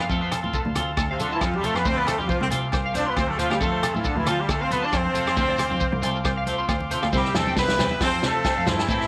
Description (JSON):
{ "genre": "highlife guitar band", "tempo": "136 BPM", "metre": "4/4", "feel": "swing 55% on 16ths", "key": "unclear", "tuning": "A4 = 440 Hz", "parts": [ { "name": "clean electric guitar", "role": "accompaniment", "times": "0.0-9.0 s", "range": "F3 to A4", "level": "-33 LUFS", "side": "equal", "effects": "spring reverb" }, { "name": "overdriven combo organ", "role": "sustained chords", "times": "0.0-9.1 s", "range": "E5 to D6", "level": "-38 LUFS", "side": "equal", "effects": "none" }, { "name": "electric guitar at the edge of break-up", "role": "arpeggios", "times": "0.0-9.1 s", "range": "A4 to C6", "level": "-33 LUFS", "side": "equal", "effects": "analog chorus, tape echo" }, { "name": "warm cello", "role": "bass", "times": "0.0-9.1 s", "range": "C2 to C3", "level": "-31 LUFS", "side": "equal", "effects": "none" }, { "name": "agogo bells", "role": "percussion", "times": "0.0-8.9 s", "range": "none", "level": "-36 LUFS", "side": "equal", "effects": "none" }, { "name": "shekere", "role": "percussion", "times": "0.0-9.0 s", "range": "none", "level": "-37 LUFS", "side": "equal", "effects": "none" }, { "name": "vintage drum kit", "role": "drums", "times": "0.1-9.1 s", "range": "hi-hat, kick drum, rim click, snare drum", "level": "-31 LUFS", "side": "equal", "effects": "none" }, { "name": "congas", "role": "percussion", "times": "0.4-8.8 s", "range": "none", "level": "-38 LUFS", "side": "equal", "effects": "none" }, { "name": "clear horn section", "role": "melody", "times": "1.1-9.1 s", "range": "C3 to D5", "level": "-28 LUFS", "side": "equal", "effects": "tape echo" } ], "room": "light reverb", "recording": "none", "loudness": "-23 LUFS", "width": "mono", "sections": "0.0-7.1 A section; 7.1-9.1 B section", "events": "horn section solo 0.0-7.1", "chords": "0.1 F; 1.9 Dm7; 3.6 F; 5.4 Dm7; 7.1 C; 8.0 F" }